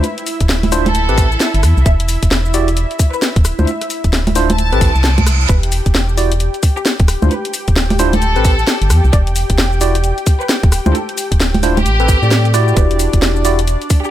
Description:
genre	UK garage, two-step garage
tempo	132 BPM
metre	4/4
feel	swing 62% on 16ths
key	E minor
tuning	A4 = 440 Hz
part	rich studio violin section	melody	0.0-14.1 s	G4 to A5	-23 LUFS	equal	dub echo
part	warm analog pad	sustained chords	0.0-14.1 s	D4 to G5	-24 LUFS	equal	chorus, sidechain pumping
part	tine electric piano	stabs	0.0-13.6 s	C4 to D5	-19 LUFS	right 1 dB	medium stereo tremolo, tape echo
part	garage drum kit	drums	0.0-14.1 s	congas, hi-hat, rim click, shaker, snare drum	-18 LUFS	equal	studio reverb
part	organ-like FM bass	bass	0.4-13.8 s	D1 to A2	-15 LUFS	equal	none
part	electronic kick drum	drums	0.4-14.0 s	none	-13 LUFS	equal	overdrive, studio reverb
part	reverse cymbal	sound effects	4.8-5.5 s	none	-24 LUFS	right 6 dB	none
room	little or no reverb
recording	none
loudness	-12 LUFS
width	side -12 dB against mid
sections	0.0-14.1 A section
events	reverse cymbal 4.8-5.5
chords	0.0 Dm9; 0.9 Am9; 1.9 E7(no3); 3.4 Dm9; 4.6 Am9; 5.5 Em7; 7.1 Dm9; 8.2 Am9; 9.1 Em7; 10.7 Dm9; 11.9 Am9; 12.8 Em9

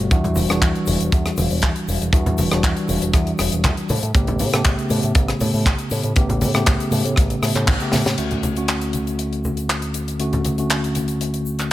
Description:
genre	nu-disco, nu disco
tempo	119 BPM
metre	4/4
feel	straight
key	D major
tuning	A4 = 436 Hz
part	mellow tine electric piano	accompaniment	0.0-11.7 s	C#3 to G4	-22 LUFS	equal	medium stereo tremolo, sidechain pumping, tape echo
part	picked electric bass with an envelope filter	bass	0.0-11.7 s	E1 to A2	-24 LUFS	equal	none
part	kick drum	drums	0.1-7.8 s	none	-18 LUFS	equal	none
part	tight funk drum kit	drums	0.1-11.7 s	crash cymbal, handclaps, hi-hat, rim click, snare drum	-24 LUFS	left 1 dB	none
part	egg shaker and congas	percussion	0.1-11.7 s	none	-27 LUFS	left 1 dB	none
room	light reverb, small room ambience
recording	none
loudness	-17 LUFS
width	side -15 dB against mid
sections	0.0-8.2 A section; 8.2-11.7 B section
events	band accent 7.7; drum fill 7.9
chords	0.1 Em9; 3.9 A9; 8.2 Dmaj7

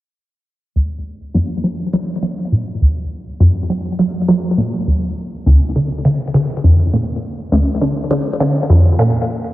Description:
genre	ambient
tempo	102 BPM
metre	4/4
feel	straight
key	unclear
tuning	A4 = 440 Hz
part	resonant blip pluck	riff	0.8-9.2 s	D2 to Gb3	-14 LUFS	equal	phaser, lush chorus, cassette tape, ping-pong delay
room	wet lush hall reverb, RT60 3.4 s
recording	worn, warbling old tape, cassette tape, warbly pitch drift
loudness	-14 LUFS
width	side -16 dB against mid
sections	0.8-9.5 A section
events	filter sweep on synth arpeggio sound 0.8-9.5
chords	none

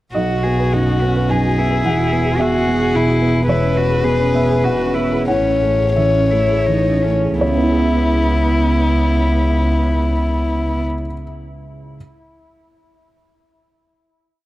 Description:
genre	neoclassical piano and strings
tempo	79-111 BPM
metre	3/4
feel	rubato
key	C# minor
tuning	A4 = 440 Hz
part	dark violin	melody	0.1-10.8 s	E4 to C#5	-19 LUFS	left 3 dB	none
part	rich cello	second line	0.1-10.8 s	B3 to G#4	-23 LUFS	right 3 dB	none
part	felt-muted upright piano	accompaniment	0.1-12.0 s	B1 to G#5	-20 LUFS	right 2 dB	none
part	warm double bass	bass	0.1-10.8 s	E1 to C#2	-19 LUFS	equal	none
room	moderate spring reverb, RT60 2.3 s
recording	dark, warm production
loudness	-14 LUFS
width	side -16 dB against mid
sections	0.1-7.4 theme; 7.4-11.9 final chord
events	slowing down 2.7-7.4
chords	0.1 B; 1.9 Eadd9; 3.5 C#m7/E; 5.3 Amaj7; 7.4 C#m7

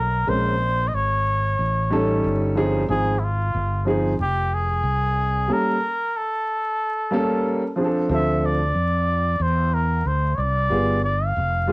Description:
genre	hip hop, jazz-hop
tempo	92 BPM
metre	4/4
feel	swing 63% on 16ths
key	unclear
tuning	A4 = 438 Hz
part	trumpet with cup mute	melody	0.0-11.7 s	E4 to F5	-23 LUFS	equal	cassette tape
part	fretless electric bass	bass	0.0-11.7 s	F1 to F2	-23 LUFS	equal	lush chorus
part	warm concert grand piano	accompaniment	0.3-11.7 s	F3 to Bb4	-21 LUFS	equal	cassette tape
room	moderate small room reverb, RT60 0.6 s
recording	home recording on cassette, vinyl crackle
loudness	-19 LUFS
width	side -24 dB against mid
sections	0.0-11.7 A section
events	none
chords	0.3 Bbm9; 1.6 A7#11; 2.9 Ab6; 5.5 A7b9; 8.1 Dm7; 10.7 G7b9

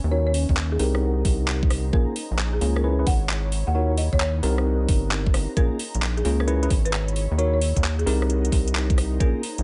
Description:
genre	UK garage, two-step garage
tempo	132 BPM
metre	4/4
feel	swing 66% on 16ths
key	unclear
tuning	A4 = 440 Hz
part	rubbery square bass	bass	0.0-9.6 s	G1 to Eb2	-26 LUFS	equal	none
part	ethereal airy pad	texture	0.0-9.6 s	Db4 to Cb6	-38 LUFS	equal	ensemble chorus, built-in reverb, sidechain pumping
part	folk marimba with medium hard mallets	melody	0.1-9.4 s	Ab4 to Gb5	-33 LUFS	equal	tape echo
part	bell-like tine electric piano	stabs	0.1-9.4 s	Bb3 to Db5	-30 LUFS	equal	low-pass filter, tape echo
part	garage drum kit	drums	0.3-9.6 s	handclaps, hi-hat, rim click	-32 LUFS	equal	none
part	electronic kick drum	drums	0.5-9.3 s	none	-24 LUFS	equal	none
room	digital ambience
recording	nothing above 10.8 kHz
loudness	-23 LUFS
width	mono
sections	0.0-9.6 A section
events	filter sweep on tine electric piano 0.0-9.6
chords	0.1 Ebm7; 1.0 Cm7; 1.9 Bbm7; 2.8 Dbm7; 3.7 Ebm7; 4.7 Cm7; 5.6 Bbm7; 6.5 Dbm7; 7.4 Ebm7; 8.3 Cm7

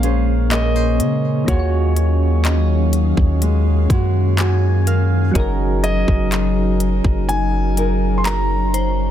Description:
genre	contemporary R&B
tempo	62 BPM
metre	4/4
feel	straight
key	unclear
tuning	A4 = 440 Hz
part	warm grand piano	melody	0.0-9.1 s	Db5 to C6	-25 LUFS	equal	ping-pong delay
part	soft electric-piano-like synth keys	accompaniment	0.0-9.1 s	Bb2 to Ab5	-24 LUFS	right 1 dB	chorus, tremolo
part	ethereal airy pad	sustained chords	0.0-9.1 s	Eb3 to F5	-24 LUFS	left 1 dB	ensemble chorus, built-in reverb, sidechain pumping
part	nylon-string guitar	arpeggios	0.0-9.1 s	Eb3 to C5	-26 LUFS	equal	ping-pong delay
part	long sustained 808-style bass	bass	0.0-9.1 s	Gb1 to Db3	-17 LUFS	equal	none
part	trap drum kit	drums	0.0-9.0 s	handclaps, hi-hat, kick drum	-20 LUFS	equal	none
part	glassy synth bell	texture	0.0-9.1 s	Ab4 to Bb5	-33 LUFS	left 2 dB	chorus, ping-pong delay
room	digital ambience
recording	dense, heavily limited modern master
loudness	-15 LUFS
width	side -10 dB against mid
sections	0.0-9.1 A section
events	synth keys fill 3.9-5.4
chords	0.0 Bbm9; 1.5 Ebm11; 5.4 Gb69

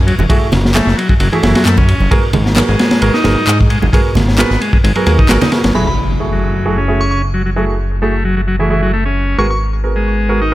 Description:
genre	breakbeat, breaks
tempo	132 BPM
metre	4/4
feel	swing 54% on 16ths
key	F# dorian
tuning	A4 = 443 Hz
part	fat analog bass	bass	0.0-10.5 s	F#1 to G#2	-15 LUFS	equal	none
part	combo organ	riff	0.1-10.5 s	E3 to D#4	-18 LUFS	left 1 dB	low-pass filter, ping-pong delay
part	crunchy breakbeat drum kit	drums	0.1-5.7 s	kick drum, ride cymbal, snare drum	-14 LUFS	equal	none
part	congas	percussion	0.2-5.7 s	none	-21 LUFS	right 3 dB	none
part	warm concert grand piano	stabs	0.3-10.5 s	A3 to A#4	-19 LUFS	right 3 dB	low-pass filter, ping-pong delay
part	electronic handclaps	drums	0.7-5.4 s	none	-21 LUFS	left 1 dB	overdrive
part	impact	sound effects	5.7-7.6 s	none	-22 LUFS	equal	none
part	glassy synth bell	melody	5.8-9.6 s	B5 to C#6	-23 LUFS	equal	chorus, phaser, old record sound, vintage 12-bit sampler grit, ping-pong delay
room	small room reverb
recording	none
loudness	-10 LUFS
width	side -16 dB against mid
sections	0.0-5.7 A section; 5.7-10.5 B section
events	impact 5.7-7.6; filter sweep on transistor combo organ 5.7-10.5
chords	0.0 F#m9; 2.1 G#m9; 5.7 F#m9; 9.4 G#m9

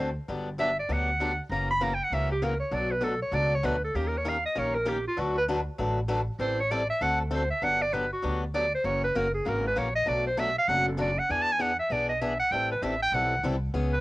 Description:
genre	acoustic string swing (jazz manouche)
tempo	196 BPM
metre	4/4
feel	swing 60% on 8ths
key	D major, G major from 7.6 s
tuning	A4 = 440 Hz
part	breathy clarinet	melody	0.0-14.0 s	F4 to B5	-27 LUFS	right 1 dB	cassette tape
part	picked swing-style acoustic guitar	accompaniment	0.0-13.9 s	B2 to B4	-32 LUFS	left 2 dB	none
part	upright bass	bass	0.0-14.0 s	F#1 to E2	-32 LUFS	equal	none
room	moderate booth ambience, RT60 0.2 s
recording	home recording on cassette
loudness	-25 LUFS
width	side -19 dB against mid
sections	0.0-7.6 A section; 7.6-14.0 A section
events	clarinet solo 0.0-14.0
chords	0.3 Gmaj7; 1.5 F#7; 2.7 Bm7; 4.0 Eb7; 5.2 D6; 6.4 Am7; 7.0 D7; 7.6 Gmaj7; 8.8 F#7; 10.1 Bm7; 11.3 E7; 12.5 Am7

